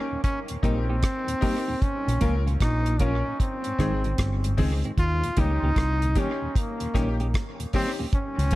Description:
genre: roots reggae.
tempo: 76 BPM.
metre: 4/4.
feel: swing 64% on 16ths.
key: unclear.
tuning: A4 = 441 Hz.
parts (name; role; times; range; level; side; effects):
brilliant trombone; melody; 0.0-8.6 s; Bb3 to F4; -29 LUFS; equal; dub echo.
bright upright piano; stabs; 0.0-8.6 s; C4 to Bb4; -36 LUFS; left 6 dB; none.
mellow tonewheel organ; accompaniment; 0.1-8.6 s; Eb2 to Eb4; -35 LUFS; left 2 dB; dub echo.
deep reggae drum kit; drums; 0.2-8.6 s; hi-hat, kick drum, rim click; -26 LUFS; equal; none.
clean electric guitar; accompaniment; 0.6-8.6 s; Eb3 to G4; -34 LUFS; right 3 dB; dub echo.
fingered electric bass; bass; 0.6-8.6 s; G1 to Eb2; -24 LUFS; equal; none.
room: light reverb, studio reverb.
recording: echo-heavy mix.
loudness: -22 LUFS.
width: side -17 dB against mid.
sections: 0.0-5.0 A section; 5.0-8.6 B section.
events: none.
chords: 0.0 Eb; 1.8 Bbm; 3.4 Ab; 5.0 Eb7.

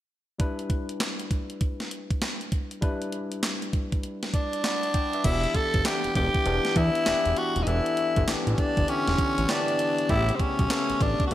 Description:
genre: R&B, new jack swing.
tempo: 99 BPM.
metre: 4/4.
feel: swing 64% on 16ths.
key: E dorian.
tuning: A4 = 441 Hz.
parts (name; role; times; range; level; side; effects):
barky tine electric piano; accompaniment; 0.4-11.3 s; C#3 to B5; -31 LUFS; left 2 dB; none.
crisp 8-bit digital drum machine; drums; 0.4-11.3 s; crash cymbal, handclaps, hi-hat, kick drum, snare drum; -28 LUFS; equal; gated reverb.
growling tenor saxophone; melody; 4.3-11.3 s; C4 to A4; -26 LUFS; equal; none.
fat analog bass; bass; 5.2-11.3 s; D#1 to E2; -27 LUFS; equal; none.
room: moderate lush hall reverb, RT60 1.6 s.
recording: bright 1980s-style digital production.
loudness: -23 LUFS.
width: side -13 dB against mid.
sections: 0.4-5.2 A section; 5.2-11.3 B section.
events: none.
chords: 0.4 Em7; 10.1 A9.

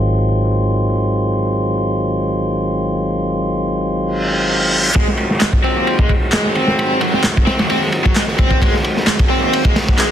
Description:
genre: breakbeat, breaks.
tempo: 131 BPM.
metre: 4/4.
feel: swing 54% on 16ths.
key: unclear.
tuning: A4 = 440 Hz.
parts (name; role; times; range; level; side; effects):
tonewheel organ; sustained chords; 0.0-10.1 s; D#3 to F#4; -19 LUFS; equal; stopped rotary speaker, sidechain pumping, low-pass filter.
picked electric bass; bass; 0.0-10.1 s; G#1 to D#2; -24 LUFS; equal; high-pass filter.
reverse cymbal and riser; sound effects; 4.1-10.1 s; none; -22 LUFS; right 1 dB; none.
overdriven electric guitar; riff; 4.9-10.1 s; F#3 to B#3; -18 LUFS; equal; tube saturation, tremolo, low-pass filter, tape echo.
crunchy breakbeat drum kit; drums; 4.9-10.1 s; kick drum, ride cymbal, snare drum; -15 LUFS; equal; low-pass filter on kick, low-pass filter on cymbals, low-pass filter on snare, low-pass filter on room.
electronic handclaps; drums; 5.4-10.1 s; none; -23 LUFS; equal; none.
room: light reverb, small room reverb.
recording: dense, heavily limited modern master.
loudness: -14 LUFS.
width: side -10 dB against mid.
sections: 0.0-5.0 A section; 5.0-10.1 B section.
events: reverse cymbal 4.1-5.0; build-up 5.0-10.1; filter sweep on drum 5.0-10.1; filter sweep on tonewheel organ 5.0-10.1.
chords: 0.0 G#7.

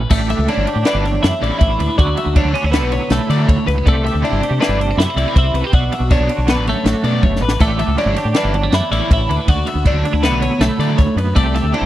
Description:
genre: math rock and midwest emo.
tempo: 160 BPM.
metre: 5/4.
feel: straight.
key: D major.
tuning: A4 = 440 Hz.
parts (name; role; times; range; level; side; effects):
twangy electric guitar; accompaniment; 0.0-11.9 s; D2 to G4; -24 LUFS; right 6 dB; tremolo.
twelve-string electric guitar; arpeggios; 0.0-11.9 s; B4 to E5; -25 LUFS; left 6 dB; tape echo.
fingered electric bass; bass; 0.0-11.9 s; F#1 to D3; -18 LUFS; equal; none.
twelve-string electric guitar; melody; 0.1-11.9 s; A3 to G4; -20 LUFS; equal; analog chorus.
biting overdriven guitar; riff; 0.1-11.9 s; B2 to E4; -26 LUFS; equal; none.
compact cocktail drum kit; drums; 0.1-11.8 s; crash cymbal, kick drum, ride cymbal, snare drum, toms; -17 LUFS; equal; none.
room: little or no reverb.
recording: dry, close 1970s-style studio recording.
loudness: -13 LUFS.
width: side -13 dB against mid.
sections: 0.1-11.9 A section.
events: drum fill 7.2-7.6.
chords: 0.1 A7sus4; 2.0 D69; 3.9 Am9; 5.7 Bm9; 7.6 A7sus4; 9.5 D69.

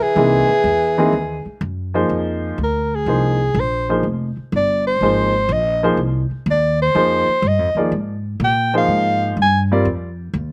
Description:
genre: jazz.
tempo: 124 BPM.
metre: 4/4.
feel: swing 69% on 8ths.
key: F dorian.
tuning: A4 = 439 Hz.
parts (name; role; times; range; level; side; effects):
warm soprano saxophone; melody; 0.0-9.6 s; G#4 to Ab5; -20 LUFS; equal; none.
breathy tenor saxophone; second line; 0.0-1.6 s; E3; -26 LUFS; equal; slapback echo.
upright bass; bass; 0.0-10.5 s; F1 to Bb2; -24 LUFS; equal; none.
warm upright piano; accompaniment; 0.2-9.9 s; E3 to D5; -22 LUFS; equal; none.
room: little or no reverb.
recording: recorded outdoors, with no room sound.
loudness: -18 LUFS.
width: mono.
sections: 0.0-2.1 A section; 2.1-10.5 B section.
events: soprano saxophone solo 2.1-10.5.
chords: 0.2 C7alt; 2.1 Fm11.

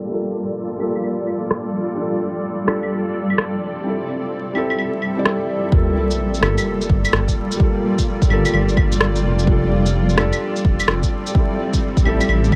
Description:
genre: future garage.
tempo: 128 BPM.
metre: 4/4.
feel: swing 64% on 16ths.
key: G dorian.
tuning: A4 = 440 Hz.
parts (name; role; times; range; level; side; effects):
felt-muted upright piano; accompaniment; 0.0-12.6 s; G3 to D5; -26 LUFS; equal; vintage 12-bit sampler grit, sidechain pumping, low-pass filter, delay.
granular cloud pad; sustained chords; 0.0-12.6 s; G3 to E5; -26 LUFS; equal; built-in reverb, sidechain pumping.
electronic claves, rim click and shaker; drums; 0.8-12.6 s; none; -24 LUFS; equal; low-pass filter on perc, low-pass filter on snare, low-pass filter on room.
electronic kick drum; drums; 5.7-12.6 s; none; -20 LUFS; equal; overdrive.
sub drop; sound effects; 5.7-7.6 s; none; -28 LUFS; equal; none.
dark detuned saw bass; bass; 6.4-12.5 s; F1 to A1; -21 LUFS; equal; sidechain pumping.
room: light reverb.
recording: vinyl crackle, low-pass filter.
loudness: -19 LUFS.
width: mono.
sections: 0.0-5.7 A section; 5.7-12.6 B section.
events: filter sweep on felt piano 0.0-5.7; filter sweep 0.0-5.7; impact 5.7-7.6.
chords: 0.0 Gm9; 2.0 F69; 3.8 Am7; 5.7 Gm9; 9.5 F69; 11.3 Am7.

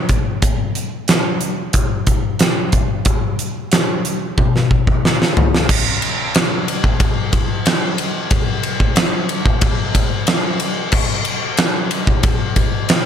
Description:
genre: rock.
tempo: 92 BPM.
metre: 4/4.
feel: straight.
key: none.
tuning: none.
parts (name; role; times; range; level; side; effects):
huge arena drum kit; drums; 0.1-13.0 s; crash cymbal, hi-hat, kick drum, ride cymbal, snare drum, toms; -14 LUFS; equal; none.
room: little or no reverb.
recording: none.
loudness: -15 LUFS.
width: side -8 dB against mid.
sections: 0.0-5.7 A section; 5.7-13.1 B section.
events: drum fill 4.4-5.7.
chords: none.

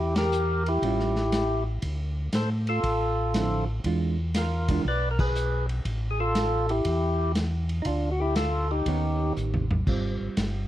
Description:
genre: soul jazz organ trio.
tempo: 119 BPM.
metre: 4/4.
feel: swing 68% on 8ths.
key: unclear.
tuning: A4 = 439 Hz.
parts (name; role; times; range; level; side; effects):
percussive tonewheel organ; melody; 0.0-9.3 s; D4 to D5; -27 LUFS; left 1 dB; slow rotary speaker, overdrive, plate reverb.
mellow tonewheel organ; bass; 0.0-10.7 s; G1 to A2; -28 LUFS; equal; slow rotary speaker.
vintage drum kit; drums; 0.2-10.5 s; crash cymbal, hi-hat, kick drum, ride cymbal, snare drum, toms; -31 LUFS; equal; none.
hollow-body jazz guitar; accompaniment; 0.8-4.8, 8.9-10.7 s; D3 to G4; -30 LUFS; right 5 dB; none.
room: light reverb.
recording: dark, warm production.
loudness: -24 LUFS.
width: side -13 dB against mid.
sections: 0.0-9.9 A section.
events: band accent 0.1, 5.1; drum fill 9.4-9.9.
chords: 0.0 Edim; 0.8 A7b13; 1.8 Dm9; 3.8 E7b9; 5.9 A5; 7.9 Dm; 8.9 Ebaug7; 9.9 Ab6.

